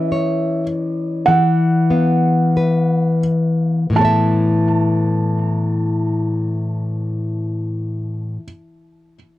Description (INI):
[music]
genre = children's music, lullaby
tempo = 41-55 BPM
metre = 4/4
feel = rubato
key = A major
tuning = A4 = 440 Hz
[part]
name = felt-muted upright piano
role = melody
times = 0.0-8.4 s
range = E5 to A5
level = -21 LUFS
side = right 5 dB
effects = tape echo
[part]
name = nylon-string guitar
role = accompaniment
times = 0.0-8.5 s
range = A2 to E5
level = -16 LUFS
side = left 2 dB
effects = none
[sound]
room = light reverb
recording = dry, close 1970s-style studio recording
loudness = -15 LUFS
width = side -15 dB against mid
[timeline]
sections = 0.0-4.0 A section; 4.0-9.4 B section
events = slowing down 0.0-4.0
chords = 0.0 C#m/E; 1.3 Esus2